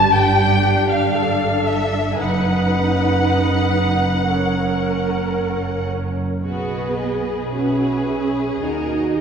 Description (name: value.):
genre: classical, slow romantic movement for string orchestra.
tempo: 54-60 BPM.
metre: 4/4.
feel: rubato.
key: B major.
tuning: A4 = 438 Hz.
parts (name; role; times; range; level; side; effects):
muted studio violin section; melody; 0.0-9.2 s; D#5 to A5; -24 LUFS; left 3 dB; none.
muted chamber violin section; second line; 0.0-9.2 s; F#4 to A5; -24 LUFS; left 2 dB; none.
muted chamber viola section; accompaniment; 0.0-9.2 s; C#4 to B4; -23 LUFS; right 1 dB; none.
muted chamber cello section; bass; 0.0-9.2 s; F#2 to D#4; -22 LUFS; right 2 dB; none.
muted studio double bass section; bass; 0.0-9.2 s; F#1 to D#2; -24 LUFS; right 2 dB; none.
room: wet church reverb, RT60 3.0 s.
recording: recorded in a church or concert hall.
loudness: -17 LUFS.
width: side -7 dB against mid.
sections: 0.0-6.4 A section; 6.4-9.2 B section.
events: none.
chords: 0.0 G5; 2.2 B/F#; 4.3 F#; 6.4 B; 8.6 D#m.